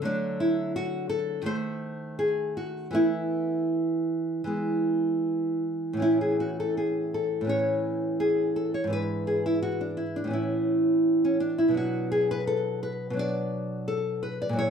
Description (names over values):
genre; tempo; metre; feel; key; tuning
classical, baroque-style dance for nylon-string guitar; 77-87 BPM; 4/4; rubato; A major; A4 = 440 Hz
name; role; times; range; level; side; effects
nylon-string guitar; solo; 0.0-14.7 s; G#2 to D5; -25 LUFS; equal; slapback echo
room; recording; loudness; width
light reverb; dark, warm production; -25 LUFS; side -7 dB against mid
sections
0.0-6.0 A section; 6.0-14.7 A section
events
none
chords
0.1 D; 1.5 D#dim7; 3.0 Esus4; 4.5 E; 6.0 A; 8.9 E7/G#; 10.3 A; 11.8 Bm